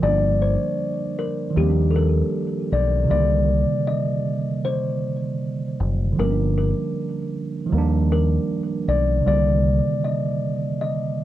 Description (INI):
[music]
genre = hip hop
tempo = 78 BPM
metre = 4/4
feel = swing 64% on 16ths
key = C minor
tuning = A4 = 441 Hz
[part]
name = kalimba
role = melody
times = 0.0-11.2 s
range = G4 to Eb5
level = -25 LUFS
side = left 5 dB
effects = low-pass filter, analog delay
[part]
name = mellow tine electric piano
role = accompaniment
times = 0.0-11.2 s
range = C3 to D4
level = -23 LUFS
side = right 4 dB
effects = cassette tape, low-pass filter
[part]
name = deep dub fingered electric bass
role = bass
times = 0.0-9.8 s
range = F#1 to Eb2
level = -20 LUFS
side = left 1 dB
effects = tube saturation
[sound]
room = light reverb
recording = home recording on cassette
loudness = -19 LUFS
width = side -13 dB against mid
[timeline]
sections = 0.0-11.2 A section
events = none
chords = 0.0 Gm7; 1.6 Ebmaj7; 3.1 Cm9; 6.2 Gm7; 7.7 Ebmaj7; 9.3 Cm9